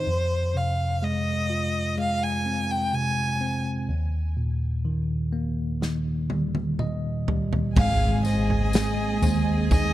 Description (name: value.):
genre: pop ballad.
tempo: 62 BPM.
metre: 4/4.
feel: straight.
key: Ab major.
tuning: A4 = 441 Hz.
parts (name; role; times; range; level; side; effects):
warm violin; melody; 0.0-9.9 s; C5 to Ab5; -28 LUFS; equal; none.
bell-like tine electric piano; accompaniment; 0.0-9.9 s; Eb2 to Eb5; -26 LUFS; equal; medium stereo tremolo.
natural country drum kit; drums; 5.8-9.9 s; crash cymbal, kick drum, snare drum, toms; -25 LUFS; right 1 dB; none.
warm symphonic violin section; second line; 7.8-9.9 s; Ab4 to Ab5; -32 LUFS; right 2 dB; none.
ethereal airy pad; sustained chords; 8.6-9.9 s; Ab3 to C4; -31 LUFS; right 6 dB; ensemble chorus, built-in reverb, phaser.
woody fretless electric bass; bass; 7.8-9.9 s; Ab1 to Eb2; -25 LUFS; equal; none.
tambourine; percussion; 7.8-9.9 s; none; -40 LUFS; left 6 dB; none.
impact; sound effects; 7.8-9.9 s; none; -32 LUFS; equal; none.
room: light reverb, small room ambience.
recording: dark, warm production.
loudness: -23 LUFS.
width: side -14 dB against mid.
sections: 0.0-7.8 A section; 7.8-9.9 B section.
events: drum fill 5.8-7.8; tine electric piano fill 6.3-7.8; impact 7.8-9.9.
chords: 0.1 Fm; 3.9 Eb; 7.8 Abadd9.